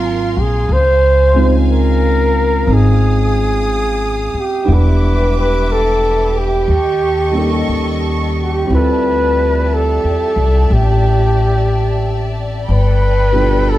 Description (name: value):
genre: jazz ballad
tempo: 60 BPM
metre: 4/4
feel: swing 68% on 8ths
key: unclear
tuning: A4 = 439 Hz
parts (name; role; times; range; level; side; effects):
- warm flugelhorn; melody; 0.0-13.8 s; F4 to C5; -16 LUFS; right 1 dB; none
- warm grand piano; accompaniment; 0.0-13.8 s; B2 to F#5; -20 LUFS; right 2 dB; none
- warm studio string section; sustained chords; 0.0-13.8 s; G4 to Eb6; -24 LUFS; equal; none
- upright bass; bass; 0.0-13.8 s; E1 to E2; -15 LUFS; left 1 dB; none
room: moderate large studio reverb, RT60 1.0 s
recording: heard from further back in the room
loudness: -12 LUFS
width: side -14 dB against mid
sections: 0.0-13.8 A section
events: none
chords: 0.0 Ab13; 0.7 Dbmaj7; 4.7 Em7; 6.7 Eb7#11; 8.7 Dm11; 12.7 G9